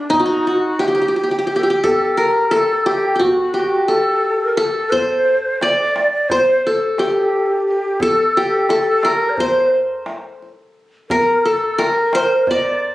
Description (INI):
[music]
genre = Turkish makam ensemble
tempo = 175 BPM (eighths)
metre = 9/8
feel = straight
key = C makam nikriz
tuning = A4 = 440 Hz
[part]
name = qanun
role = melody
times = 0.0-12.9 s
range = D4 to D5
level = -16 LUFS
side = equal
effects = none
[part]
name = breathy ney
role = second line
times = 0.0-12.8 s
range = D4 to Eb5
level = -20 LUFS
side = equal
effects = none
[part]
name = darbuka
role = percussion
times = 0.1-12.6 s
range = none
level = -28 LUFS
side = right 1 dB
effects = none
[sound]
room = light reverb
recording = recorded on a phone in the room, studio reverb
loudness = -14 LUFS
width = side -16 dB against mid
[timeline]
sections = 0.0-12.9 A section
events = none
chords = none